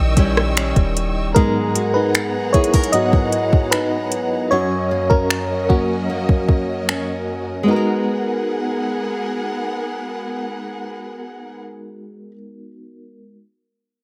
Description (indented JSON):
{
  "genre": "contemporary R&B",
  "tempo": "76 BPM",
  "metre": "4/4",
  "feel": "straight",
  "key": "G# minor",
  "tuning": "A4 = 440 Hz",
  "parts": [
    { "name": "FM electric piano with tremolo", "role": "accompaniment", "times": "0.0-13.3 s", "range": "F#2 to D#5", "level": "-24 LUFS", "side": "equal", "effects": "none" },
    { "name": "warm studio string section", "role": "sustained chords", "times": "0.0-11.6 s", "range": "F#3 to E6", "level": "-30 LUFS", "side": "equal", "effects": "sidechain pumping" },
    { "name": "nylon-string guitar", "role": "arpeggios", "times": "0.0-12.4 s", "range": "F#2 to A#4", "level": "-27 LUFS", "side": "equal", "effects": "digital delay" },
    { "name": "soft 808-style bass", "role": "bass", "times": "0.0-1.3 s", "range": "D#1 to A#1", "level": "-23 LUFS", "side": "equal", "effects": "none" },
    { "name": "smooth R&B drum kit", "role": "drums", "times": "0.2-7.1 s", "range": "finger snaps, hi-hat, kick drum, rim click", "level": "-19 LUFS", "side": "equal", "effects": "overdrive" }
  ],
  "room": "light reverb",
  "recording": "none",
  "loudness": "-19 LUFS",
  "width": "mono",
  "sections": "0.0-1.4 A section; 1.4-7.7 B section; 7.7-10.8 C section",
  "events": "FM electric piano solo 1.4-7.7",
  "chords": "0.0 D#7b9; 1.4 G#m9; 4.5 D#m7/F#; 7.7 G#m9"
}